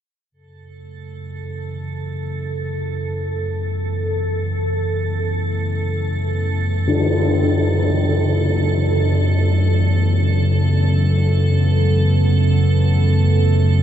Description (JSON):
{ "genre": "dark ambient drone", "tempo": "free time", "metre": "none", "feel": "none", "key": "F# minor", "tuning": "A4 = 439 Hz", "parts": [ { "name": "sweeping resonant pad", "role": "sustained chords", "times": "0.3-13.8 s", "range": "F#2 to C#4", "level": "-30 LUFS", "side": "equal", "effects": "chorus" }, { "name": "deep rumbling drone", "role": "drone", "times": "0.7-13.8 s", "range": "F#2 to C#3", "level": "-17 LUFS", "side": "equal", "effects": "built-in reverb" }, { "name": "icy glass pad", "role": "texture", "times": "1.0-13.8 s", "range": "A4", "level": "-26 LUFS", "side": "right 3 dB", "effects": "chorus, built-in reverb, shimmer reverb" }, { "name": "tam-tam", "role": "percussion", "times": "6.9-7.1 s", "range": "none", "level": "-23 LUFS", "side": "left 3 dB", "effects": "low-pass filter on cymbals" } ], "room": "light reverb", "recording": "dark, warm production", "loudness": "-16 LUFS", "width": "side -10 dB against mid", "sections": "0.3-13.8 A section", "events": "fade-in on analog synth pad 0.3-13.8", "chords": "0.3 F#m7", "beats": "free time" }